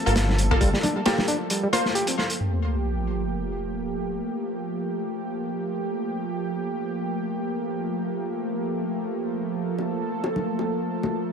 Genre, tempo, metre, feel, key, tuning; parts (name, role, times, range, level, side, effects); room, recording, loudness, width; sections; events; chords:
breakbeat, breaks; 134 BPM; 4/4; swing 57% on 16ths; G minor; A4 = 444 Hz
lush unison pad; sustained chords; 0.0-11.3 s; F3 to A4; -27 LUFS; right 1 dB; chorus, sidechain pumping
overdriven reed electric piano; riff; 0.0-2.1 s; F3 to G4; -28 LUFS; equal; low-pass filter, digital delay
orchestra-hit-like synth stab; stabs; 0.1-1.8 s; Bb3 to C5; -27 LUFS; left 1 dB; built-in reverb, cassette tape, digital delay
dark detuned saw bass; bass; 0.1-0.7 s; G1; -22 LUFS; equal
crunchy breakbeat drum kit; drums; 0.1-2.4 s; hi-hat, kick drum, snare drum; -25 LUFS; equal; low-pass filter on kick, low-pass filter on hats, low-pass filter on snare, low-pass filter on room
congas and bongos; percussion; 0.3-1.8, 9.8-11.1 s; -31 LUFS; left 2 dB
sub drop; sound effects; 2.4-4.2 s; -28 LUFS; equal
light reverb, small room ambience; -24 LUFS; side -6 dB against mid
0.0-2.4 A section; 2.4-11.3 B section
impact 2.4-4.2
0.0 Gm9